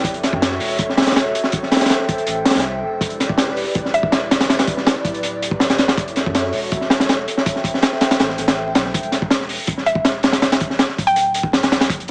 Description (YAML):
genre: drum and bass, jungle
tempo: 162 BPM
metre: 4/4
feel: straight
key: E minor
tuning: A4 = 439 Hz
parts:
  - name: airy breathy pad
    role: sustained chords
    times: 0.0-8.9 s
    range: E4 to G5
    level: -26 LUFS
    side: equal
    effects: chorus
  - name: soft dub sub bass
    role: bass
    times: 0.0-12.1 s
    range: D1 to F#2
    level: -35 LUFS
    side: equal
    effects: tube saturation
  - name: crunchy breakbeat drum kit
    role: drums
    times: 0.0-12.1 s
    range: hi-hat, kick drum, snare drum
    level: -19 LUFS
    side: equal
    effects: none
  - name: mallet-like synth pluck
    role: melody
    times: 3.9-4.2, 9.9-11.4 s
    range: E5 to G5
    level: -24 LUFS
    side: equal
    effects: subtle chorus, dub echo
room: moderate lush hall reverb, RT60 2.1 s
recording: vinyl crackle, small speaker sound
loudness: -18 LUFS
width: mono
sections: 0.0-8.9 A section; 8.9-12.1 A section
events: drop 0.0-8.9, 8.9-12.1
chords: 0.1 F#m7; 1.5 Am7; 3.0 Em7; 6.0 F#m7; 7.5 Am7; 8.9 E7(no3)